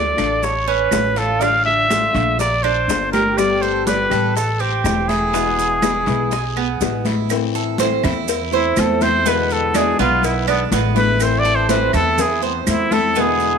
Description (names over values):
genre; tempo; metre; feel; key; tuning
latin, Cuban son and guajira; 123 BPM; 4/4; straight; A harmonic minor from 7.3 s; A4 = 440 Hz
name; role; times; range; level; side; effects
breathy trumpet; melody; 0.0-13.6 s; B3 to F5; -18 LUFS; equal; slapback echo
nylon-string guitar; accompaniment; 0.0-13.6 s; B2 to G4; -24 LUFS; left 14 dB; none
Cuban tres; arpeggios; 0.0-13.6 s; B3 to D5; -23 LUFS; right 13 dB; none
upright bass; bass; 0.0-13.6 s; E1 to E2; -24 LUFS; right 1 dB; none
bongos and cowbell; percussion; 0.2-13.4 s; none; -28 LUFS; left 13 dB; none
claves; percussion; 0.2-12.9 s; none; -29 LUFS; right 16 dB; none
congas; percussion; 0.2-13.6 s; none; -26 LUFS; left 1 dB; none
guiro; percussion; 0.2-13.6 s; none; -34 LUFS; left 14 dB; none
maracas; percussion; 0.2-13.6 s; none; -32 LUFS; right 16 dB; none
room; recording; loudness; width
light reverb; 1960s-style stereo with parts hard left and right; -15 LUFS; side -6 dB against mid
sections
0.0-7.3 A section; 7.3-13.6 B section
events
drum fill 6.8-7.3; trumpet solo 7.3-13.6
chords
0.4 A; 1.4 Dm/A; 2.4 Bb; 3.4 Gadd9; 4.4 Am; 5.3 E; 7.3 Am; 9.3 E7; 11.2 Am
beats
0.43 0.92 | 1.41 1.90 2.40 2.89 | 3.38 3.87 4.36 4.85 | 5.34 5.83 6.32 6.81 | 7.30 7.79 8.28 8.77 | 9.26 9.74 10.23 10.72 | 11.21 11.70 12.19 12.67 | 13.16